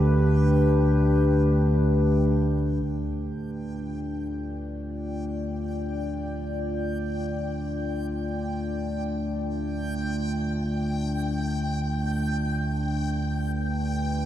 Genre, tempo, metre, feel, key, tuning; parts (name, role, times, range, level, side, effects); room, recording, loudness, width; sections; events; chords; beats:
dark ambient drone; free time; D dorian; A4 = 440 Hz
dark analog pad; sustained chords; 0.0-14.3 s; A3 to D5; -27 LUFS; left 1 dB; chorus
deep rumbling drone; drone; 0.0-14.3 s; D2 to D3; -26 LUFS; equal; built-in reverb
backwards swelling texture; texture; 0.0-14.3 s; G5; -38 LUFS; equal; built-in reverb
wet cathedral reverb, RT60 5.4 s; in a vast, echoing space; -24 LUFS; side -12 dB against mid
0.0-2.8 A section; 2.8-14.3 B section
filter sweep on synth drone 2.8-14.3
0.0 Dm
free time